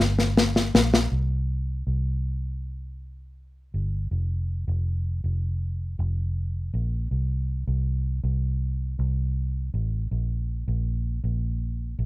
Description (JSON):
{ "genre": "pop ballad", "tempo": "80 BPM", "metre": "4/4", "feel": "straight", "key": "unclear", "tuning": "A4 = 438 Hz", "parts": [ { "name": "vintage muted fingered electric bass", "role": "bass", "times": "0.0-12.1 s", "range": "F1 to C2", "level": "-25 LUFS", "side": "equal", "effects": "none" }, { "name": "snare drum", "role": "drums", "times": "0.0-1.1 s", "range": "none", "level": "-20 LUFS", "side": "left 2 dB", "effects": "none" } ], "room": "little or no reverb", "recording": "rough home demo mix", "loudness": "-24 LUFS", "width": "side -19 dB against mid", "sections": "0.0-1.1 A section; 1.1-4.1 B section; 4.1-12.1 C section", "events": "drum fill 0.0-1.1", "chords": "none" }